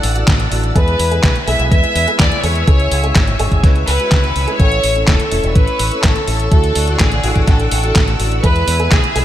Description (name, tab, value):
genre	italo disco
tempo	125 BPM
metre	4/4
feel	straight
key	A major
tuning	A4 = 440 Hz
part	string machine, full ensemble	sustained chords	0.0-9.2 s	B4 to E6	-24 LUFS	left 1 dB	ensemble chorus
part	dark baby grand piano	stabs	0.0-9.2 s	G#3 to B4	-24 LUFS	right 2 dB	vintage 12-bit sampler grit, tape echo
part	fingered electric bass with an envelope filter	bass	0.0-9.2 s	E1 to E2	-17 LUFS	equal	none
part	detuned 8-bit digital drum machine	drums	0.0-9.2 s	handclaps, hi-hat, snare drum	-19 LUFS	equal	overdrive, gated reverb
part	electronic kick drum	drums	0.3-9.0 s	none	-13 LUFS	equal	none
part	warm studio violin section	melody	0.8-9.2 s	G#4 to E5	-19 LUFS	equal	tape echo
room	digital ambience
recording	none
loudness	-11 LUFS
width	side -12 dB against mid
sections	0.0-9.2 A section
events	none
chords	0.0 Dadd9; 0.8 E; 2.7 C#m; 4.6 A; 6.5 Dadd9; 8.4 E